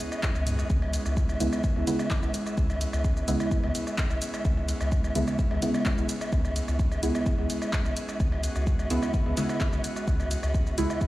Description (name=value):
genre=dub techno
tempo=128 BPM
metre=4/4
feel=straight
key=C# minor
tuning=A4 = 440 Hz
part: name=airy breathy pad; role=sustained chords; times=0.0-11.1 s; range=G#3 to D#5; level=-35 LUFS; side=right 1 dB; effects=chorus, sidechain pumping
part: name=punchy analog drum machine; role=drums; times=0.0-11.1 s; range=handclaps, hi-hat, shaker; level=-37 LUFS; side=equal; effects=overdrive, dub echo
part: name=electronic woodblock and toms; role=percussion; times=0.1-11.0 s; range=none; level=-36 LUFS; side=left 1 dB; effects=overdrive, sidechain pumping on perc, sidechain pumping on toms, dub echo
part: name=electronic kick drum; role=drums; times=0.2-11.1 s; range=none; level=-27 LUFS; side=equal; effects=none
part: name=soft dub sub bass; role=bass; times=0.4-10.9 s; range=B1 to C#2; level=-29 LUFS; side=equal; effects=tube saturation, sidechain pumping
part: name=deep mellow chord stab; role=stabs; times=1.4-11.1 s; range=C#3 to E4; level=-30 LUFS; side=right 1 dB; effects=chorus, phaser, cassette tape, sidechain pumping, dub echo
room=little or no reverb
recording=played on a big sound system in a bare room, stone room reverb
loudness=-24 LUFS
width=side -16 dB against mid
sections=0.0-11.1 A section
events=none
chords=0.0 C#m7